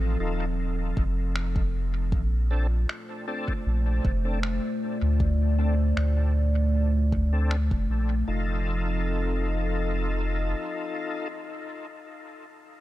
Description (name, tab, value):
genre	ambient dub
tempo	78 BPM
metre	4/4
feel	swing 53% on 16ths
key	F mixolydian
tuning	A4 = 440 Hz
part	warbly tape-like pad	sustained chords	0.0-11.6 s	Bb2 to Eb5	-32 LUFS	right 1 dB	chorus, built-in reverb
part	soft dub sub bass	bass	0.0-10.5 s	Eb1 to D2	-24 LUFS	equal	none
part	overdriven tonewheel organ	stabs	0.2-11.3 s	C4 to A4	-35 LUFS	left 3 dB	chorus vibrato, slow rotary speaker, low-pass filter, dub echo
part	electronic kick drum	drums	1.0-7.9 s	none	-27 LUFS	equal	small room reverb
part	electronic finger snaps	drums	1.4-7.7 s	none	-38 LUFS	equal	small room reverb, dub echo
room	light reverb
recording	none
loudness	-24 LUFS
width	side -15 dB against mid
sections	0.0-8.3 A section; 8.3-11.4 B section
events	filter sweep on tonewheel organ 0.0-8.3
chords	0.0 F7; 2.1 Bbmaj9; 8.3 F7